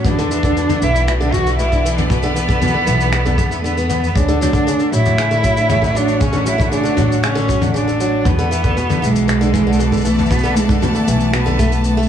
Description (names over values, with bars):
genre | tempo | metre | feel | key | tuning
folktronica | 117 BPM | 4/4 | straight | unclear | A4 = 443 Hz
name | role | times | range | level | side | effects
dark cello | melody | 0.0-12.1 s | G#3 to F#4 | -18 LUFS | right 1 dB | digital delay
bright string quartet | sustained chords | 0.0-12.1 s | E3 to A5 | -26 LUFS | equal | none
picked old ladder-braced acoustic guitar | arpeggios | 0.0-12.1 s | B2 to E4 | -22 LUFS | right 1 dB | low-pass filter
upright bass | bass | 0.0-12.1 s | A1 to E2 | -19 LUFS | equal | none
kick drum | drums | 0.0-11.7 s | none | -20 LUFS | equal | none
soft brush drum kit | drums | 0.1-12.1 s | finger snaps, shaker, toms | -24 LUFS | left 3 dB | none
room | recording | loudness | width
light reverb, small room reverb | none | -13 LUFS | side -9 dB against mid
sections
0.0-12.1 A section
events
none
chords
0.1 E7sus4; 4.2 Dmaj7; 8.3 E7sus4